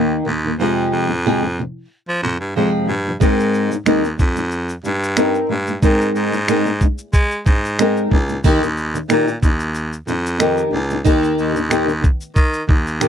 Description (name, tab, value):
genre	acoustic pop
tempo	92 BPM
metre	4/4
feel	swing 55% on 16ths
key	Ab major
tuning	A4 = 439 Hz
part	flamenco guitar	accompaniment	0.0-13.1 s	F2 to Bb4	-17 LUFS	equal	double-tracked left and right
part	raspy baritone saxophone	bass	0.0-13.1 s	Db2 to Ab3	-21 LUFS	equal	none
part	dusty soul sampler-style drum kit	drums	3.2-13.1 s	finger snaps, kick drum, shaker	-16 LUFS	equal	none
room	little or no reverb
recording	dry, close 1970s-style studio recording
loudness	-15 LUFS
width	side -9 dB against mid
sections	0.0-13.1 A section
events	none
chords	0.0 Eb; 0.6 Fm; 3.2 Abadd9; 8.4 Eb